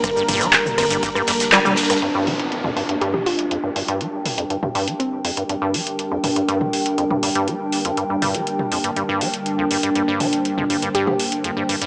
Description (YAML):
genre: acid house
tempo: 121 BPM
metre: 4/4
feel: straight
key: G minor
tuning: A4 = 440 Hz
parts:
  - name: warm analog pad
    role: sustained chords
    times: 0.0-11.9 s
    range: D3 to C5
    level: -27 LUFS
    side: equal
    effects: chorus, sidechain pumping
  - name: acid bass, square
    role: riff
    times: 0.0-11.9 s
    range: F2 to G3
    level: -23 LUFS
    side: equal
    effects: analog chorus, sidechain pumping, tape echo
  - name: damped 70s drum kit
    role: drums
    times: 0.0-2.0 s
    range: hi-hat, snare drum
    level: -25 LUFS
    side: equal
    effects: sidechain pumping on hats, high-pass filter on hats, high-pass filter on snare, high-pass filter on room
  - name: electro analog drum machine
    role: drums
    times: 0.0-11.9 s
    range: cabasa, handclaps, hi-hat, ride cymbal, rim click, toms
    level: -21 LUFS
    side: equal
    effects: low-pass filter on snare, low-pass filter on hats, low-pass filter on cymbals, low-pass filter on perc, low-pass filter on toms
  - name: electronic kick drum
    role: drums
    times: 0.0-1.1 s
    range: none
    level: -34 LUFS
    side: equal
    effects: none
  - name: warbly tape-like pad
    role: texture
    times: 0.0-11.9 s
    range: D4 to Bb5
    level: -23 LUFS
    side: equal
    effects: chorus, built-in reverb, sidechain pumping
  - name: warm sub bass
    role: bass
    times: 0.3-1.5 s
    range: F1 to G1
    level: -35 LUFS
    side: equal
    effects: sidechain pumping
  - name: downlifter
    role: sound effects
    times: 2.0-6.0 s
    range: none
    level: -29 LUFS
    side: equal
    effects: none
  - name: hollow square pluck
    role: melody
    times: 3.0-5.4, 10.9-11.2 s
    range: C4 to G4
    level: -24 LUFS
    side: equal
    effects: chorus, analog delay
room: moderate lush hall reverb, RT60 2.0 s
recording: dry, gritty hardware recording, small speaker sound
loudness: -17 LUFS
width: side -36 dB against mid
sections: 0.0-2.0 A section; 2.0-11.9 B section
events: drop 0.0-2.0; kick drops out 1.5-2.0; band accent 1.5; filter sweep on acid bass 2.0-11.9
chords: 0.0 Gm